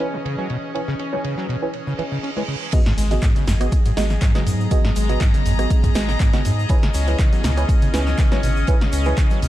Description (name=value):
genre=acid house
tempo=121 BPM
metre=4/4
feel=swing 54% on 16ths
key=G# minor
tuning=A4 = 442 Hz
part: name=warbly tape-like pad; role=sustained chords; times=0.0-9.5 s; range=C#3 to B4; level=-31 LUFS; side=right 1 dB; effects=chorus, built-in reverb, sidechain pumping
part: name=acid bass, saw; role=riff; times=0.0-9.5 s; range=F#2 to C#4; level=-26 LUFS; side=equal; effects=overdrive, wide subtle chorus, sidechain pumping, tape echo
part: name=deep mellow chord stab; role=stabs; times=0.0-9.2 s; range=B3 to G#5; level=-28 LUFS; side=right 3 dB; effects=chorus, tape echo
part: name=deep reggae drum kit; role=drums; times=0.0-9.5 s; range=hi-hat, ride cymbal, snare drum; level=-40 LUFS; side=right 2 dB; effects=none
part: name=rich chamber string section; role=texture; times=0.0-9.5 s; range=C#4 to A#5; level=-29 LUFS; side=left 2 dB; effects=sidechain pumping
part: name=reverse cymbal and impact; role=sound effects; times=1.9-4.7 s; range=none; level=-33 LUFS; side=right 1 dB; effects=none
part: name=electronic kick drum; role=drums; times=2.7-9.3 s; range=none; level=-17 LUFS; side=equal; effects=overdrive
part: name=punchy analog drum machine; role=drums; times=2.7-9.5 s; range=crash cymbal, handclaps, hi-hat, rim click, snare drum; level=-29 LUFS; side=equal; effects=overdrive, low-pass filter on cymbals, low-pass filter on hats, low-pass filter on snare, low-pass filter on room
part: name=tube shaker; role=percussion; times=2.7-9.5 s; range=none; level=-39 LUFS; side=left 2 dB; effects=none
part: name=saturated sub bass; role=bass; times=3.0-9.5 s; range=G#1 to G#2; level=-20 LUFS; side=equal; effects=sidechain pumping
room=little or no reverb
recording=dark, warm production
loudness=-17 LUFS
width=side -14 dB against mid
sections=0.0-2.7 A section; 2.7-9.5 B section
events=reverse cymbal 1.9-2.7; drop 2.7-9.5; impact 2.7-4.7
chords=0.0 C#m7; 2.7 G#m7; 6.7 C#m7